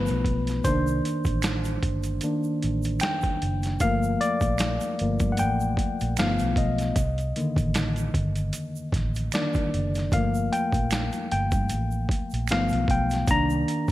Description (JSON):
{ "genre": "R&B, neo-soul", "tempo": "76 BPM", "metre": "4/4", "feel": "swing 56% on 16ths", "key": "G minor", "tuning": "A4 = 440 Hz", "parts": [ { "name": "mellow tine electric piano", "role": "accompaniment", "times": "0.0-13.9 s", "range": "D3 to Bb5", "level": "-26 LUFS", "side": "left 1 dB", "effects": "overdrive" }, { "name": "vintage muted fingered electric bass", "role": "bass", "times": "0.0-13.9 s", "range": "F#1 to G2", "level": "-27 LUFS", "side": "right 1 dB", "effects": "none" }, { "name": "boom bap sampler-style drum kit", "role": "drums", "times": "0.1-13.9 s", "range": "hi-hat, kick drum, snare drum", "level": "-28 LUFS", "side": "right 1 dB", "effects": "overdrive, gated reverb" }, { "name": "egg shaker and finger snaps", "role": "percussion", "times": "0.1-13.9 s", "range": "none", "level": "-40 LUFS", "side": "right 12 dB", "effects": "none" } ], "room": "light reverb, digital ambience", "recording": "bright 1980s-style digital production", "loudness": "-23 LUFS", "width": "side -15 dB against mid", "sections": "0.0-13.9 A section", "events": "tine electric piano solo 0.0-13.9", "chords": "0.0 G7 (rootless); 0.6 Cm9; 3.8 Gm9; 6.2 G7; 7.0 Cm9 (rootless); 10.1 Gm9; 12.5 G7; 13.3 Cm9" }